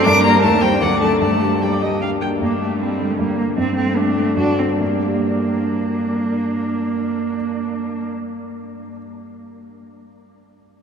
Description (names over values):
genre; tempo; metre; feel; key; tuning
quick classical-period movement for piano quartet; 134-164 BPM; 3/4; rubato; G minor; A4 = 440 Hz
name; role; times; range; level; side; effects
warm cello; second line; 0.0-8.1 s; F#3 to D4; -21 LUFS; right 2 dB; none
dark baby grand piano; accompaniment; 0.0-9.0 s; D2 to D5; -21 LUFS; left 2 dB; none
rich viola; accompaniment; 0.0-8.1 s; Bb3 to G5; -26 LUFS; right 2 dB; none
warm violin; melody; 0.1-2.0 s; F#5 to D6; -22 LUFS; left 4 dB; none
room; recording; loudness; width
wet cathedral reverb, RT60 6.8 s; in a vast, echoing space; -16 LUFS; side -7 dB against mid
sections
0.0-2.4 A section; 2.4-4.8 B section; 4.8-7.3 C section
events
slowing down 1.8-4.8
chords
0.1 Gm; 0.4 Cm/Eb; 0.8 D; 1.2 Gm; 3.6 D5/G; 4.8 Gm